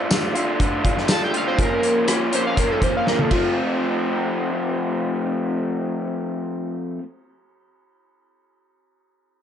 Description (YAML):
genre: indie rock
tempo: 122 BPM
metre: 4/4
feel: straight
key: F major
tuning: A4 = 440 Hz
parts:
  - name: overdriven synth lead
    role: melody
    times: 0.0-3.6 s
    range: F4 to A5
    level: -22 LUFS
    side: equal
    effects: phaser, slapback echo
  - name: raw garage guitar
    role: riff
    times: 0.0-7.0 s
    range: Bb2 to F4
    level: -22 LUFS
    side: equal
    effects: overdrive
  - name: loose indie drum kit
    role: drums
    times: 0.1-3.4 s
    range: hi-hat, kick drum, ride cymbal, rim click, snare drum, tambourine, toms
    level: -23 LUFS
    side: equal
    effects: none
room: light reverb, studio reverb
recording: nothing above 10.7 kHz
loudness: -19 LUFS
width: side -9 dB against mid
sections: 0.0-3.6 A section; 3.6-7.5 B section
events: analog synth lead solo 0.0-3.6; drum fill 3.1-3.6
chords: 0.0 Dm; 1.6 Bbm; 3.3 F